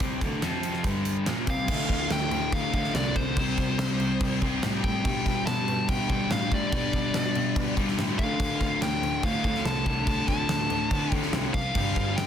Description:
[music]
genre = hard rock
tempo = 143 BPM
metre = 4/4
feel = straight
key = D dorian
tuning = A4 = 440 Hz
[part]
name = overdriven electric guitar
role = riff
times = 0.0-12.3 s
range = D2 to C4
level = -29 LUFS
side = left 1 dB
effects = none
[part]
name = bright cello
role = bass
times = 0.0-12.3 s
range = C2 to B2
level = -32 LUFS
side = equal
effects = none
[part]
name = gated 80s drum kit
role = drums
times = 0.0-12.3 s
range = crash cymbal, hi-hat, kick drum, snare drum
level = -29 LUFS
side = equal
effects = none
[part]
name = nasal lead guitar with a parked wah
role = melody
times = 1.5-12.3 s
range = C5 to A5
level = -30 LUFS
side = left 1 dB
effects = overdrive, slapback echo
[sound]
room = light reverb, small room reverb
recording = dense, heavily limited modern master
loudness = -24 LUFS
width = side -9 dB against mid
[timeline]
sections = 0.0-1.7 A section; 1.7-12.3 B section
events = none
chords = 0.4 F5; 0.8 G5; 1.3 Bbsus2; 1.7 Dm; 3.4 C5; 5.0 G; 8.2 Dm; 11.8 G5

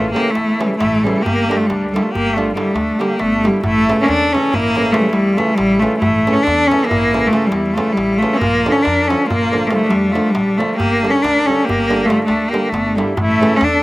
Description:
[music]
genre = balkan folk, Balkan wedding band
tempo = 277 BPM (eighths)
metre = 11/8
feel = straight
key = unclear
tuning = A4 = 440 Hz
[part]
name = clear cello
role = melody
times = 0.0-13.8 s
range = G3 to D4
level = -14 LUFS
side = equal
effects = slapback echo
[part]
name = warm trumpet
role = second line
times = 0.0-13.8 s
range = D4 to Bb4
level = -24 LUFS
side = left 2 dB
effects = none
[part]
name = flamenco guitar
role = accompaniment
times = 0.0-13.6 s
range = C#3 to D4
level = -22 LUFS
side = right 2 dB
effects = slapback echo
[part]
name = upright bass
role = bass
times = 0.0-13.8 s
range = G1 to F2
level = -27 LUFS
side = equal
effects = none
[part]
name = darbuka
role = percussion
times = 0.1-13.7 s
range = none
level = -25 LUFS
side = right 1 dB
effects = slapback echo
[sound]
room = little or no reverb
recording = recorded outdoors, with no room sound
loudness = -13 LUFS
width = side -18 dB against mid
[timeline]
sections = 0.0-3.6 A section; 3.6-13.2 B section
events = none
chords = 0.0 A; 1.2 Gm; 3.6 A; 8.4 Bb; 10.8 Gm; 13.2 A

